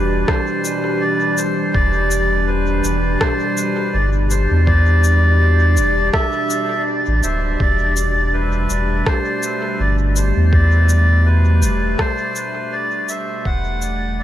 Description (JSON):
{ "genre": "ambient dub", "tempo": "82 BPM", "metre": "4/4", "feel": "swing 56% on 16ths", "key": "E minor", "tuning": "A4 = 438 Hz", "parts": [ { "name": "melodica", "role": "melody", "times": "0.0-14.2 s", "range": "B4 to F#5", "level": "-20 LUFS", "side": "equal", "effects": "dub echo" }, { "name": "warbly tape-like pad", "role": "sustained chords", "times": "0.0-14.2 s", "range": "B2 to G4", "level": "-22 LUFS", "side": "equal", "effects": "chorus, built-in reverb" }, { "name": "warm sub bass", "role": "bass", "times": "0.0-14.2 s", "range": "D1 to E2", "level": "-16 LUFS", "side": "equal", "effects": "none" }, { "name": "electronic kick drum", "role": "drums", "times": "0.3-13.6 s", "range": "none", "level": "-19 LUFS", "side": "equal", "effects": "none" }, { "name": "electronic rim click and cabasa", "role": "drums", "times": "0.3-14.0 s", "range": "none", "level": "-25 LUFS", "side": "left 1 dB", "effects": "dub echo" } ], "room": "light reverb", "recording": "lossy compression artefacts", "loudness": "-14 LUFS", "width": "side -12 dB against mid", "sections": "0.0-14.2 A section", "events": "fade-out 11.5-14.2", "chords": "0.0 Em7; 7.6 Gadd9/E" }